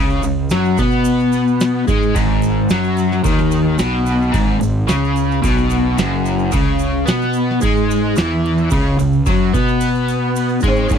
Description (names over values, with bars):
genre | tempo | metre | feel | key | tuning
psychedelic rock | 110 BPM | 4/4 | straight | unclear | A4 = 440 Hz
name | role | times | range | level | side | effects
biting overdriven guitar | riff | 0.0-11.0 s | Gb2 to Ab4 | -17 LUFS | left 2 dB | harmonic tremolo
fuzz fingered electric bass | bass | 0.0-11.0 s | Gb1 to Cb3 | -19 LUFS | right 1 dB | overdrive
tube shaker | percussion | 0.1-11.0 s | none | -37 LUFS | right 26 dB | none
booming analog drum machine | drums | 0.2-11.0 s | kick drum, ride cymbal, snare drum | -20 LUFS | right 1 dB | none
sitar | melody | 10.7-11.0 s | C4 to Db4 | -19 LUFS | right 2 dB | none
room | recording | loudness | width
little or no reverb | dry, close 1970s-style studio recording | -14 LUFS | side -7 dB against mid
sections
0.0-10.9 A section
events
kick and snare drop out 8.7-10.9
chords
0.0 Db5; 2.1 Ab5; 6.5 Db5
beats
0.50 1.05 1.60 | 2.15 2.69 3.24 3.79 | 4.34 4.88 5.43 5.98 | 6.53 7.07 7.62 8.16 | 8.71 9.26 9.80 10.35 | 10.90